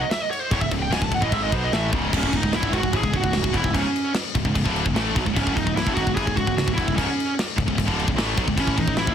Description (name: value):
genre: heavy metal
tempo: 149 BPM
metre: 4/4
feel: straight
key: unclear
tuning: A4 = 440 Hz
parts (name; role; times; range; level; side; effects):
- high-gain lead guitar; melody; 0.0-9.1 s; C#4 to A5; -26 LUFS; right 2 dB; distortion, digital delay
- tight metal drum kit; drums; 0.1-9.1 s; crash cymbal, kick drum, snare drum; -25 LUFS; equal; soft clipping on kick
- scooped high-gain guitar; riff; 0.5-9.1 s; C#2 to B3; -27 LUFS; left 2 dB; distortion
- tight distorted guitar; riff; 0.5-9.1 s; C#2 to B3; -28 LUFS; equal; distortion
- fuzz picked electric bass; bass; 0.5-9.1 s; C#1 to D#2; -28 LUFS; equal; overdrive
room: light reverb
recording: dense, heavily limited modern master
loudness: -20 LUFS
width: side -8 dB against mid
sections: 0.0-2.1 A section; 2.1-9.1 B section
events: lead electric guitar solo 0.0-2.1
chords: 0.0 C#m; 8.6 A5